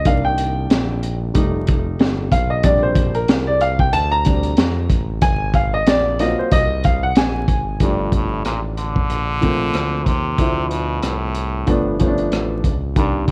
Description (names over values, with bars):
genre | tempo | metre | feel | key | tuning
hip hop, jazz-hop | 93 BPM | 4/4 | swing 57% on 16ths | G minor | A4 = 438 Hz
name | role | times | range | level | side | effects
warm upright piano | accompaniment | 0.0-13.3 s | Eb3 to Bb5 | -22 LUFS | equal | plate reverb
smooth synth bass | bass | 0.0-13.3 s | F1 to F2 | -26 LUFS | equal | none
crunchy breakbeat drum kit | drums | 0.1-13.3 s | hi-hat, kick drum, rim click, snare drum | -21 LUFS | equal | none
trombone with metal mute | melody | 7.8-13.3 s | G2 to D3 | -26 LUFS | equal | plate reverb
room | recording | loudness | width
moderate small room reverb, RT60 0.5 s | worn, warbling old tape, cassette tape, vinyl crackle, warbly pitch drift | -18 LUFS | mono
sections
0.0-7.8 A section; 7.8-13.3 B section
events
upright piano solo 0.0-7.8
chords
0.1 Cm7; 1.3 F7; 2.6 Bb69; 5.2 Ab13; 7.8 Gm7; 10.4 Dm7; 11.7 G7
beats
| 0.06 0.70 1.35 1.99 | 2.64 3.29 3.93 4.58 | 5.22 5.87 6.51 7.16 | 7.80 8.45 9.09 9.74 | 10.38 11.03 11.67 12.32 | 12.96